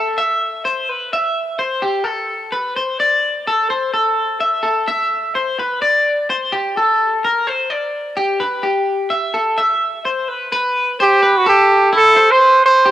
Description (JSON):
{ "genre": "rock", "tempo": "128 BPM", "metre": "5/4", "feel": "straight", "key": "C major", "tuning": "A4 = 442 Hz", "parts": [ { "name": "electric guitar through a small old amp", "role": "arpeggios", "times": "0.0-12.9 s", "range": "E4 to E5", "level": "-16 LUFS", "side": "left 1 dB", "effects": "lush chorus, cassette tape" }, { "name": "warm trumpet", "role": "melody", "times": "11.0-12.9 s", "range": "F#4 to C5", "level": "-9 LUFS", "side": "right 1 dB", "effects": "none" } ], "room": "light reverb, small room ambience", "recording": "home recording on cassette", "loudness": "-14 LUFS", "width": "side -13 dB against mid", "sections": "0.0-10.5 A section; 10.5-12.9 B section", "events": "none", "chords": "0.0 C6; 5.8 Bbadd9 (rootless); 8.2 Cmaj7; 10.5 Am9", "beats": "0.18 0.65 | 1.12 1.59 2.06 2.53 3.00 | 3.47 3.94 4.41 4.88 5.35 | 5.82 6.29 6.76 7.23 7.70 | 8.18 8.64 9.12 9.58 10.05 | 10.52 10.99 11.46 11.93 12.39 | 12.86" }